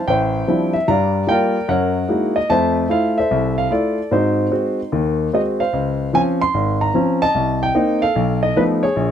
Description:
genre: solo jazz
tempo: 148 BPM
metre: 4/4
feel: swing 64% on 8ths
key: unclear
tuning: A4 = 436 Hz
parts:
  - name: warm grand piano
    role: solo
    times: 0.0-9.1 s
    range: Ab1 to C6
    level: -16 LUFS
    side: equal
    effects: none
room: little or no reverb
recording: close, detailed microphones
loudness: -16 LUFS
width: side -9 dB against mid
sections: 0.0-5.7 A section; 5.7-9.1 B section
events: none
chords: 0.0 Dm11; 0.9 Gm7; 1.7 Gb13; 2.5 Fmaj7; 4.1 Ab7; 5.7 Dbmaj7; 7.3 Cm7; 8.1 Cb7#11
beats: 0.07 0.47 | 0.88 1.28 1.68 2.09 | 2.49 2.90 3.30 3.70 | 4.11 4.51 4.92 5.32 | 5.72 6.13 6.53 6.94 | 7.34 7.74 8.15 8.55 | 8.95

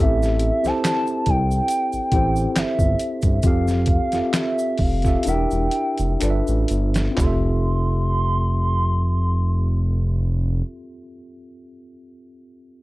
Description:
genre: R&B, neo-soul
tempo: 60-71 BPM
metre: 4/4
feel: swing 54% on 16ths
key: F major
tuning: A4 = 440 Hz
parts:
  - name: gliding portamento lead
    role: melody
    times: 0.0-10.6 s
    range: E5 to C6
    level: -25 LUFS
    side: right 1 dB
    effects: chorus
  - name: mellow tine electric piano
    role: accompaniment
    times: 0.0-12.8 s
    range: C4 to F5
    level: -26 LUFS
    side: equal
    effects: medium stereo tremolo, plate reverb
  - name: smooth synth bass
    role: bass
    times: 0.0-10.6 s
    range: E1 to C2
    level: -21 LUFS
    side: equal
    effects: none
  - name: boom bap sampler-style drum kit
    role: drums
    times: 0.2-7.4 s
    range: handclaps, hi-hat, kick drum, snare drum, toms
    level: -22 LUFS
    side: equal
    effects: none
  - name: tube shaker and finger snaps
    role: percussion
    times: 0.2-7.6 s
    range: none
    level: -35 LUFS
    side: right 3 dB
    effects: none
room: light reverb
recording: dark, warm production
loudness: -18 LUFS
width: side -19 dB against mid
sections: 0.0-7.2 A section; 7.2-11.2 B section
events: slowing down 0.0-7.2; drum fill 5.3-7.2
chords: 0.0 Am7; 3.4 Fmaj9; 5.3 Em7b5; 6.2 G13; 7.2 Fmaj9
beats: 0.83 1.69 2.55 | 3.44 4.33 5.25 6.20 | 7.18 8.18 9.17 10.16

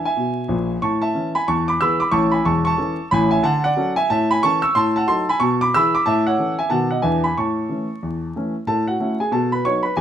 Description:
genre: jazz, stride piano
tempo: 184 BPM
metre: 4/4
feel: swing 62% on 8ths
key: A major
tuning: A4 = 440 Hz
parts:
  - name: warm grand piano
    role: solo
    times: 0.0-10.0 s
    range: E1 to E6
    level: -17 LUFS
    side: equal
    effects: none
room: moderate club reverb, RT60 0.8 s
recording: vinyl crackle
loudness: -17 LUFS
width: side -9 dB against mid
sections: 0.0-8.7 A section; 8.7-10.0 A section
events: none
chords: 0.0 E; 0.8 A; 1.5 E; 2.1 A; 3.4 Dmaj7; 4.1 A; 4.7 Adim7; 5.4 E/B; 6.0 A; 6.7 B7; 7.0 E7; 7.4 A; 9.3 B7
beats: 0.18 0.51 | 0.83 1.16 1.49 1.81 | 2.14 2.46 2.79 3.11 | 3.44 3.77 4.09 4.42 | 4.75 5.07 5.40 5.72 | 6.05 6.38 6.70 7.03 | 7.36 7.68 8.01 8.34 | 8.66 8.99 9.32 9.64 | 9.97

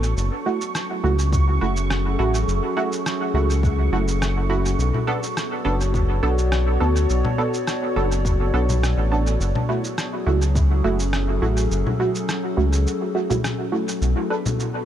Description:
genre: ambient dub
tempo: 104 BPM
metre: 4/4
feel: straight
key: B dorian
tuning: A4 = 441 Hz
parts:
  - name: warbly tape-like pad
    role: sustained chords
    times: 0.0-14.8 s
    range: F#3 to D5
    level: -27 LUFS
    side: left 2 dB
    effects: chorus, built-in reverb
  - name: filtered dub chord stab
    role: stabs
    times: 0.0-14.4 s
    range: A3 to B4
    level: -26 LUFS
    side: right 4 dB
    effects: ensemble chorus, dub echo
  - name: round analog bass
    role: bass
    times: 0.0-14.1 s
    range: F#1 to D2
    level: -20 LUFS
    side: equal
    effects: none
  - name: electronic shaker, rim click and congas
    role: drums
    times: 0.0-14.7 s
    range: none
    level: -28 LUFS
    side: left 1 dB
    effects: overdrive, dub echo
  - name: bubbling stepped-filter texture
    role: texture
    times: 0.0-14.0 s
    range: C#6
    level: -34 LUFS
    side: right 10 dB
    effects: chorus, built-in reverb
  - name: electronic kick drum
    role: drums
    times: 1.3-10.7 s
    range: none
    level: -23 LUFS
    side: equal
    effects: none
room: light reverb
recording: none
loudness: -19 LUFS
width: side -10 dB against mid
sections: 0.0-14.0 A section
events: break 12.9-14.0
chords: 0.2 F#m7; 4.8 Bm7; 9.4 F#m7; 14.0 Bm7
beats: | 0.17 0.75 1.33 1.90 | 2.48 3.06 3.63 4.21 | 4.79 5.37 5.94 6.52 | 7.10 7.67 8.25 8.83 | 9.40 9.98 10.56 11.13 | 11.71 12.29 12.87 13.44 | 14.02 14.60

